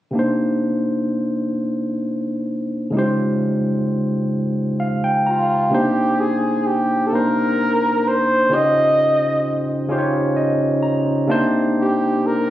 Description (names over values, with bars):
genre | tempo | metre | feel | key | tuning
R&B | 43 BPM (dotted quarters) | 6/8 | straight | C phrygian | A4 = 441 Hz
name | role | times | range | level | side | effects
barky tine electric piano | accompaniment | 0.1-12.5 s | C3 to Bb5 | -18 LUFS | equal | overdrive
breathy flugelhorn | melody | 5.3-12.5 s | F4 to Eb5 | -18 LUFS | equal | tape echo
room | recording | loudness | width
light reverb | recorded on a phone in the room, studio reverb | -17 LUFS | side -13 dB against mid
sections
0.1-5.7 A section; 5.7-12.5 B section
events
tine electric piano fill 4.3-5.7, 9.9-11.3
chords
0.1 Cm9; 2.9 Dbmaj9#11; 5.7 Cm9; 8.5 Dbmaj9#11; 11.3 Cm9